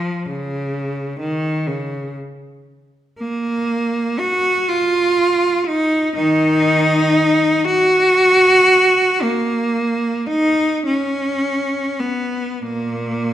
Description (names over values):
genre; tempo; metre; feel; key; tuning
classical, free, expressive piece for unaccompanied cello; 33-42 BPM (dotted quarters); 6/8; rubato; Eb minor from 3.2 s; A4 = 441 Hz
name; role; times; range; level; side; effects
rich cello; solo; 0.0-13.3 s; Bb2 to Gb4; -15 LUFS; equal; none
room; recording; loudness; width
wet recital hall reverb, RT60 1.5 s; recorded in a church or concert hall; -15 LUFS; side -11 dB against mid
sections
0.0-13.3 A section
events
none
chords
none